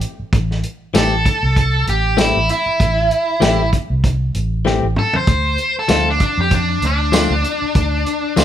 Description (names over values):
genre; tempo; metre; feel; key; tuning
straight-eighth soul blues; 97 BPM; 4/4; swing 56% on 16ths; A minor; A4 = 441 Hz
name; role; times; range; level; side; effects
warm soul drum kit; drums; 0.0-8.4 s; hi-hat, kick drum, snare drum, tambourine, toms; -18 LUFS; equal; none
vintage muted fingered electric bass; bass; 0.2-8.4 s; A1 to F2; -19 LUFS; right 1 dB; none
direct-recorded clean electric guitar; stabs; 0.9-8.4 s; E3 to G4; -19 LUFS; left 5 dB; vibrato effect
overdriven electric guitar; melody; 1.0-8.4 s; D4 to C5; -17 LUFS; equal; none
room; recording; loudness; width
light reverb; band playing live in one room; -14 LUFS; side -10 dB against mid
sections
0.0-8.4 A section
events
drum fill 4.7-5.3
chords
0.0 Am7; 5.3 Dm7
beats
| 0.32 0.94 1.56 2.18 | 2.80 3.42 4.03 4.65 | 5.27 5.89 6.51 7.13 | 7.75 8.37